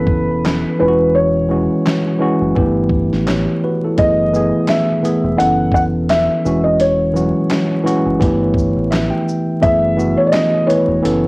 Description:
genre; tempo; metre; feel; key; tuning
lo-fi hip hop; 85 BPM; 4/4; swing 55% on 16ths; F# dorian; A4 = 440 Hz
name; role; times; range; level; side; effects
felt-muted upright piano; melody; 0.0-11.3 s; B4 to F#5; -17 LUFS; equal; low-pass filter, cassette tape
tine electric piano; accompaniment; 0.0-11.3 s; E3 to G5; -15 LUFS; equal; cassette tape, low-pass filter
deep dub fingered electric bass; bass; 0.0-11.3 s; E1 to A1; -23 LUFS; equal; tube saturation
dusty soul sampler-style drum kit; drums; 0.1-11.2 s; handclaps, hi-hat, kick drum, shaker, snare drum; -20 LUFS; equal; none
room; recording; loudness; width
light reverb; home recording on cassette, vinyl crackle; -13 LUFS; side -28 dB against mid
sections
0.0-11.3 A section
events
break 0.0-4.0; tine electric piano fill 8.6-9.6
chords
0.0 B9sus4/F#; 0.8 E69; 2.6 G69; 4.0 F#m11; 5.4 B9sus4/F#; 6.4 E69; 8.2 G69; 9.6 F#m11

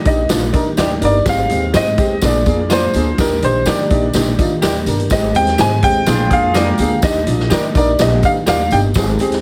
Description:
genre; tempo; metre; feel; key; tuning
uptempo 1960s-style soul; 125 BPM; 4/4; straight; Eb major; A4 = 444 Hz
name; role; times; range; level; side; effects
warm concert grand piano; melody; 0.0-8.8 s; Bb4 to Ab5; -20 LUFS; equal; plate reverb
mellow tonewheel organ; sustained chords; 0.0-9.4 s; Eb3 to Ab4; -28 LUFS; equal; none
clear upright piano; accompaniment; 0.1-9.3 s; Ab3 to Eb5; -22 LUFS; equal; plate reverb
upright bass; bass; 0.1-9.4 s; G1 to Eb3; -22 LUFS; equal; none
swinging big-band drum kit; drums; 0.1-9.4 s; hi-hat, kick drum, snare drum; -21 LUFS; equal; none
tambourine; percussion; 0.1-9.3 s; none; -33 LUFS; equal; none
electric guitar through a small old amp; stabs; 0.8-8.6 s; Eb4 to Eb5; -26 LUFS; equal; lush chorus, plate reverb
electric guitar through a small old amp; riff; 6.1-7.0 s; D4 to Bb4; -26 LUFS; equal; none
room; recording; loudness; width
light reverb; heavily compressed radio sound; -15 LUFS; mono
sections
0.0-9.4 A section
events
grand piano solo 0.0-9.4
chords
0.0 Ebmaj7; 1.3 Abmaj7; 2.2 Bb7; 3.2 Ebmaj7; 5.1 Abmaj7; 6.1 Bb7; 7.0 Ebmaj7

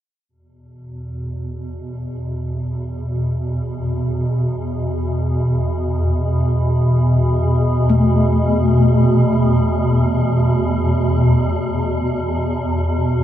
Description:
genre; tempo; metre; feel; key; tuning
dark ambient drone; free time; none; none; unclear; A4 = 440 Hz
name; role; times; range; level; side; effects
swarming drone; drone; 0.9-13.2 s; E2 to B2; -16 LUFS; equal; built-in reverb
gamelan-type bronze metallophone; arpeggios; 7.9-13.2 s; A3; -22 LUFS; left 3 dB; tape echo
room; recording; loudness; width
moderate huge ambient reverb, RT60 8.4 s; none; -16 LUFS; side -11 dB against mid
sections
0.3-13.2 A section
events
none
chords
0.3 A5

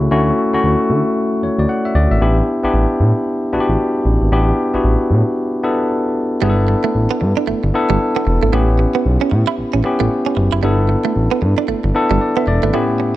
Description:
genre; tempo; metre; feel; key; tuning
R&B; 114 BPM; 4/4; swing 61% on 16ths; unclear; A4 = 443 Hz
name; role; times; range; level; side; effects
tine electric piano; accompaniment; 0.0-13.2 s; A2 to F#5; -16 LUFS; left 1 dB; none
smooth gliding synth bass; bass; 0.0-12.7 s; E1 to D3; -15 LUFS; equal; none
direct-recorded clean electric guitar; riff; 6.4-13.0 s; G3 to E4; -21 LUFS; right 9 dB; analog chorus
room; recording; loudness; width
light reverb; dark, warm production; -14 LUFS; side -15 dB against mid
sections
0.0-6.4 A section; 6.4-13.2 B section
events
break 5.4-6.4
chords
0.0 Dmaj9; 2.2 A9sus4; 6.4 G69; 8.5 A7; 10.6 G69

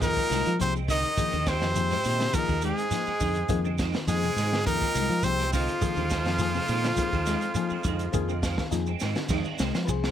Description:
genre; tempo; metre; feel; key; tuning
afrobeat; 103 BPM; 4/4; straight; F dorian; A4 = 440 Hz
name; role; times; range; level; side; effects
brilliant trumpet; melody; 0.0-8.7 s; F4 to Eb5; -28 LUFS; right 1 dB; none
edgy tenor saxophone; second line; 0.0-8.7 s; F3 to Eb4; -37 LUFS; right 3 dB; none
raspy baritone saxophone; second line; 0.0-8.7 s; F2 to Eb3; -36 LUFS; left 11 dB; none
reed electric piano; accompaniment; 0.0-10.1 s; F3 to Ab5; -33 LUFS; left 10 dB; phaser
semi-hollow electric guitar; arpeggios; 0.0-10.1 s; Ab2 to Ab3; -35 LUFS; left 6 dB; spring reverb
fingered electric bass; bass; 0.0-10.1 s; C2 to F3; -30 LUFS; right 1 dB; none
crunchy breakbeat drum kit; drums; 0.0-10.1 s; crash cymbal, hi-hat, kick drum, ride cymbal, snare drum; -32 LUFS; right 1 dB; none
shekere; percussion; 0.0-10.1 s; none; -34 LUFS; right 4 dB; none
semi-hollow electric guitar; stabs; 0.2-10.1 s; Eb3 to C4; -35 LUFS; right 10 dB; ensemble chorus
room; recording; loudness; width
light reverb; none; -24 LUFS; side -10 dB against mid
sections
0.0-9.3 A section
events
reed electric piano fill 8.1-9.3; drum fill 9.0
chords
0.0 Fm7

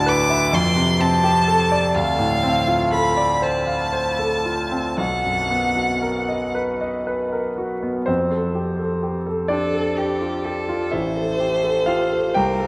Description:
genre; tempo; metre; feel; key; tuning
classical, impressionist duo for violin and grand piano; 37-43 BPM (dotted quarters); 6/8; rubato; F lydian; A4 = 438 Hz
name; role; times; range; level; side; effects
clear violin; melody; 0.0-12.7 s; G4 to D6; -24 LUFS; equal; none
clear concert grand piano; accompaniment; 0.0-12.7 s; A1 to G5; -23 LUFS; equal; none
room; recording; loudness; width
wet cathedral reverb, RT60 4.9 s; in a vast, echoing space; -21 LUFS; mono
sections
0.0-8.1 A section; 8.1-12.7 B section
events
none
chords
0.0 D69; 0.5 F69; 1.9 Dm7; 5.0 Bmaj7; 8.1 Fadd9; 10.9 Am7

